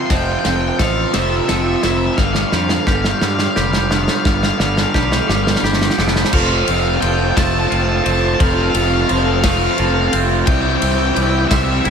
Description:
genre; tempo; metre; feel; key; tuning
post-rock; 58 BPM (dotted quarters); 6/8; straight; F lydian; A4 = 440 Hz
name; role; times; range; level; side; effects
octave-fuzz lead guitar; melody; 0.0-11.9 s; E5 to C6; -22 LUFS; left 4 dB; distortion, tape echo
twangy electric guitar; arpeggios; 0.0-11.9 s; F2 to A4; -26 LUFS; left 2 dB; spring reverb, tape echo
raw garage guitar; riff; 0.0-11.9 s; F2 to F4; -18 LUFS; right 2 dB; overdrive, phaser
fuzz fingered electric bass; bass; 0.1-11.9 s; F1 to G2; -20 LUFS; equal; overdrive
loose indie drum kit; drums; 0.1-11.9 s; crash cymbal, kick drum, ride cymbal, snare drum; -19 LUFS; equal; none
room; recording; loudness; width
light reverb, small room ambience; none; -14 LUFS; side -7 dB against mid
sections
0.0-6.3 A section; 6.3-11.9 B section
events
build-up 0.0-6.3; drum fill 0.0-6.3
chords
0.0 Fmaj7; 2.2 G7; 6.3 F; 10.5 C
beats
| 0.11 1.15 | 2.18 3.22 | 4.26 5.29 | 6.33 7.37 | 8.40 9.44 | 10.47 11.51

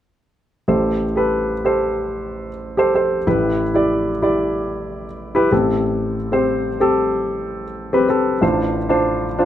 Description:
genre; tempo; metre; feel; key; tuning
pop; 93 BPM; 4/4; straight; A minor; A4 = 441 Hz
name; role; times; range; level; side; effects
warm concert grand piano; accompaniment; 0.7-9.4 s; A1 to D5; -17 LUFS; equal; none
room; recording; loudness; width
moderate studio reverb, RT60 0.8 s; none; -16 LUFS; side -11 dB against mid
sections
0.7-9.4 A section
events
none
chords
0.7 Am7; 3.3 Em/A; 5.5 Am7; 8.4 Dm7/A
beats
| 0.68 1.32 1.97 2.61 | 3.26 3.90 4.55 5.20 | 5.84 6.49 7.13 7.78 | 8.42 9.07

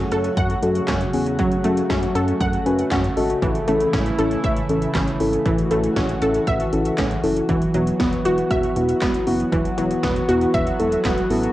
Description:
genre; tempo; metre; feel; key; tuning
synth-pop; 118 BPM; 4/4; straight; unclear; A4 = 440 Hz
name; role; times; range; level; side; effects
chorused pulse-width pad; sustained chords; 0.0-11.5 s; C#3 to F#4; -24 LUFS; equal; none
wide unison pluck; arpeggios; 0.0-11.3 s; E3 to F#5; -25 LUFS; right 1 dB; analog delay
chorused synth bass; bass; 0.0-11.5 s; E1 to F#2; -26 LUFS; equal; none
muted felt-like synth keys; accompaniment; 0.1-11.5 s; B3 to G#5; -22 LUFS; left 1 dB; chorus
80s electronic pad drums; drums; 0.1-11.5 s; handclaps, hi-hat, kick drum, snare drum; -26 LUFS; equal; cassette tape
room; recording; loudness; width
moderate spring reverb, RT60 1.3 s; home recording on cassette; -18 LUFS; side -15 dB against mid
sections
0.0-11.5 A section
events
synth keys fill 2.4-3.4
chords
0.0 F#m; 3.4 A; 7.5 Esus2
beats
0.37 0.88 | 1.39 1.90 2.40 2.91 | 3.42 3.93 4.44 4.95 | 5.46 5.96 6.47 6.98 | 7.49 8.00 8.51 9.02 | 9.52 10.03 10.54 11.05

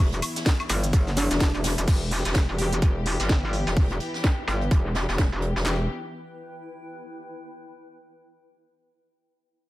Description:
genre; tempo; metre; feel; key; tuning
bass house; 127 BPM; 4/4; swing 59% on 16ths; E minor; A4 = 440 Hz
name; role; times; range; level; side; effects
dark chamber string section; sustained chords; 0.0-5.9 s; E3 to G4; -35 LUFS; left 3 dB; sidechain pumping
metallic wobble bass; bass; 0.0-5.9 s; E1 to G1; -26 LUFS; equal; chorus, tube saturation, sidechain pumping
garage drum kit; drums; 0.1-5.6 s; crash cymbal, hi-hat, ride cymbal, shaker, snare drum, woodblock; -30 LUFS; equal; low-pass filter on hats, low-pass filter on cymbals, low-pass filter on perc, low-pass filter on snare, low-pass filter on room
jazz brush drum kit; drums; 0.1-5.7 s; hi-hat, snare drum; -36 LUFS; right 2 dB; high-pass filter on hats, high-pass filter on snare, high-pass filter on room
garage drum kit; drums; 0.5-5.8 s; handclaps, kick drum, snare drum; -22 LUFS; equal; none
plucky unison lead; melody; 1.2-2.8 s; D4 to G4; -32 LUFS; equal; cassette tape, dub echo
granular cloud pad; texture; 3.4-7.5 s; E4 to G5; -42 LUFS; equal; built-in reverb, sidechain pumping
room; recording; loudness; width
little or no reverb; none; -22 LUFS; side -17 dB against mid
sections
0.0-1.9 A section; 1.9-5.7 B section; 5.7-7.5 C section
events
drop 0.0-1.9; filter sweep on drum 1.9-5.7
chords
0.0 E5; 1.9 Em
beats
0.46 0.93 1.40 | 1.88 2.35 2.82 3.29 | 3.77 4.24 4.71 5.18 | 5.66 6.13 6.60 7.07

